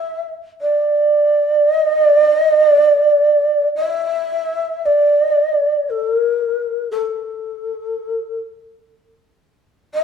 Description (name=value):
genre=japanese traditional, Japanese chamber music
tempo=54-61 BPM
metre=2/4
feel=rubato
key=unclear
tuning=A4 = 440 Hz
part: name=breathy mellow long shakuhachi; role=solo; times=0.0-10.0 s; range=A4 to E5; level=-14 LUFS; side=right 1 dB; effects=none
room=moderate recital hall reverb, RT60 1.4 s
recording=dark, warm production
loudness=-14 LUFS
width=side -7 dB against mid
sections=0.0-4.8 A section; 4.8-10.0 B section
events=none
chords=none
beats=| 0.61 1.60 | 2.63 3.72 | 4.81 5.87 | 6.90 7.92 | 8.93 9.93